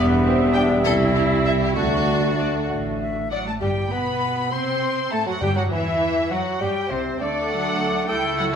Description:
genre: quick classical-period movement for symphony orchestra.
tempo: 67 BPM (dotted quarters).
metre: 6/8.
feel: straight.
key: unclear.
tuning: A4 = 440 Hz.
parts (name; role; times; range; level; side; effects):
silver concert flute; second line; 0.0-8.6 s; C5 to E6; -29 LUFS; left 3 dB; none.
warm clarinet; second line; 0.0-8.6 s; B3 to C5; -28 LUFS; equal; none.
mellow bassoon; accompaniment; 0.0-8.6 s; C3 to C4; -28 LUFS; right 1 dB; none.
warm studio viola section; accompaniment; 0.0-8.6 s; C3 to F#4; -28 LUFS; right 2 dB; none.
mellow French horn section; sustained chords; 0.0-8.6 s; C3 to E4; -27 LUFS; left 3 dB; none.
clear studio cello section; bass; 0.0-8.6 s; C2 to C4; -30 LUFS; right 2 dB; none.
dark studio double bass section; bass; 0.0-8.6 s; E1 to C3; -28 LUFS; right 3 dB; none.
dark studio violin section; melody; 0.5-8.4 s; C5 to C6; -28 LUFS; left 2 dB; none.
rich studio violin section; second line; 0.8-8.6 s; C4 to D5; -32 LUFS; left 2 dB; none.
timpani; percussion; 1.8-6.3 s; G2 to D3; -29 LUFS; left 1 dB; none.
room: wet recital hall reverb, RT60 1.4 s.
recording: none.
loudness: -19 LUFS.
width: side -7 dB against mid.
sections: 0.0-3.6 A section; 3.6-8.6 B section.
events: none.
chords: 0.0 Em; 0.8 C; 1.8 D; 3.6 G; 4.5 F#dim; 5.4 Emadd9; 7.2 D.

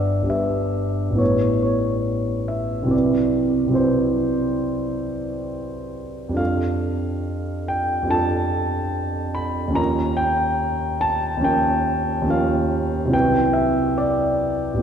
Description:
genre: classical, impressionist solo piano.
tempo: 71 BPM.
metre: 4/4.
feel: uneven beats, rubato.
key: unclear.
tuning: A4 = 440 Hz.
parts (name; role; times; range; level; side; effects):
clear concert grand piano; solo; 0.0-14.8 s; G1 to B5; -19 LUFS; equal; none.
room: wet concert hall reverb, RT60 2.5 s.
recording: heard from further back in the room.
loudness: -19 LUFS.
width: side -8 dB against mid.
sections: 0.0-14.8 A section.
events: none.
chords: 0.0 G6; 1.2 A9; 2.9 Cmaj7#11; 6.4 F69; 9.8 Eb9; 13.1 Cmaj7#11.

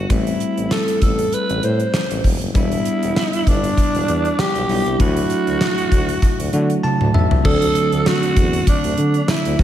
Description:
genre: 1980s-style pop.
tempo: 98 BPM.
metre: 4/4.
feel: swing 55% on 16ths.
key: unclear.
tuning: A4 = 439 Hz.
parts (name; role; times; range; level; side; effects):
raspy alto saxophone; melody; 0.0-9.6 s; D4 to C5; -21 LUFS; right 2 dB; analog delay.
bell-like tine electric piano; accompaniment; 0.0-9.6 s; D3 to A5; -22 LUFS; moving between left 6 dB and equal; auto-pan.
warm tuba; bass; 0.0-9.6 s; E1 to D3; -23 LUFS; equal; none.
gated 80s drum kit; drums; 0.1-9.6 s; crash cymbal, hi-hat, kick drum, snare drum, tambourine, toms; -19 LUFS; equal; none.
room: moderate lush hall reverb, RT60 1.6 s, studio ambience.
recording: dreamy mix soaked in reverb.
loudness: -15 LUFS.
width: side -11 dB against mid.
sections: 0.0-7.4 A section; 7.4-9.6 B section.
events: tine electric piano fill 6.5-7.4; drum fill 6.8-7.4.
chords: 0.1 Am7; 2.5 Em7; 5.0 Dadd9; 7.4 D7.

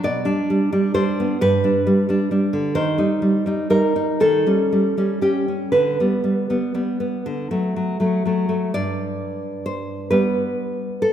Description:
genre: romantic piece for solo classical guitar.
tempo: 39-45 BPM (dotted quarters).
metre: 6/8.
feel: rubato.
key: G major.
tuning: A4 = 440 Hz.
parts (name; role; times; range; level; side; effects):
nylon-string guitar; solo; 0.0-11.1 s; G2 to D5; -18 LUFS; equal; none.
room: moderate concert hall reverb, RT60 2.2 s.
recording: recorded in a church or concert hall.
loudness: -18 LUFS.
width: side -10 dB against mid.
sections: 0.0-8.7 A section; 8.7-11.1 B section.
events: none.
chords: 0.0 G/B; 1.4 G; 2.7 Eb; 4.2 Eb7; 5.7 G/D; 7.3 D; 8.7 G.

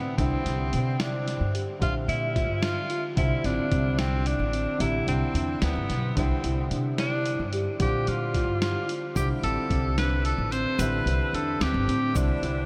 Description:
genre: progressive instrumental, band music in an uneven meter.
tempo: 221 BPM (eighths).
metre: 11/8.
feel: straight.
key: C major.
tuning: A4 = 440 Hz.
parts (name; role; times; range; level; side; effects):
bright tenor saxophone; melody; 0.0-12.7 s; B3 to C5; -33 LUFS; equal; analog delay.
warm grand piano; accompaniment; 0.0-12.7 s; C3 to E5; -36 LUFS; equal; analog chorus.
mellow tine electric piano; arpeggios; 0.0-12.6 s; C4 to G4; -34 LUFS; equal; lush chorus.
upright bass; bass; 0.0-12.7 s; G1 to C3; -31 LUFS; equal; none.
lo-fi sampler-style drum kit; drums; 0.2-12.6 s; hi-hat, kick drum, snare drum; -34 LUFS; equal; none.
tube shaker; percussion; 9.2-12.4 s; none; -49 LUFS; equal; none.
room: wet huge ambient reverb, RT60 7.6 s.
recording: dreamy mix soaked in reverb.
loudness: -26 LUFS.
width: mono.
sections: 0.0-12.7 A section.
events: none.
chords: 0.2 Cadd9; 1.8 Bb; 3.2 C69; 4.8 Am9; 6.2 Cadd9; 7.8 Bb; 9.2 C69; 10.8 Am9; 12.2 Cadd9.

